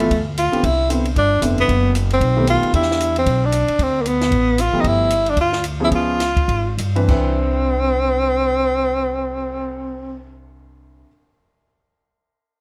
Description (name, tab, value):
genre	jazz, small-group swing and bop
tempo	193-229 BPM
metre	4/4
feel	swing 59% on 8ths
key	C major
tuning	A4 = 440 Hz
part	breathy tenor saxophone	melody	0.0-10.3 s	A3 to F4	-21 LUFS	equal	none
part	warm grand piano	accompaniment	0.0-11.1 s	C3 to Cb5	-25 LUFS	equal	none
part	upright bass	bass	0.0-11.0 s	F1 to G2	-24 LUFS	equal	none
part	compact cocktail drum kit	drums	0.0-9.5 s	crash cymbal, cymbal swell, hi-hat, kick drum, ride cymbal, snare drum	-28 LUFS	equal	none
room	light reverb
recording	dark, warm production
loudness	-18 LUFS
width	mono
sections	0.0-2.7 A section; 2.7-7.1 B section; 7.1-9.6 C section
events	slowing down 4.8-7.1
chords	0.0 G13; 0.6 Cmaj9; 1.7 F#sus4; 2.2 Baug7; 2.7 Em7; 3.8 Dm; 4.8 G9; 5.9 Db7; 7.1 Cmaj9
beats	0.11 0.37 | 0.63 0.90 1.16 1.42 | 1.68 1.95 2.21 2.47 | 2.74 3.00 3.26 3.53 | 3.79 4.05 4.32 4.58 | 4.84 5.11 5.38 5.64 | 5.92 6.20 6.49 6.78 | 7.09 7.40 7.71 8.02 | 8.33 8.64 8.95 9.26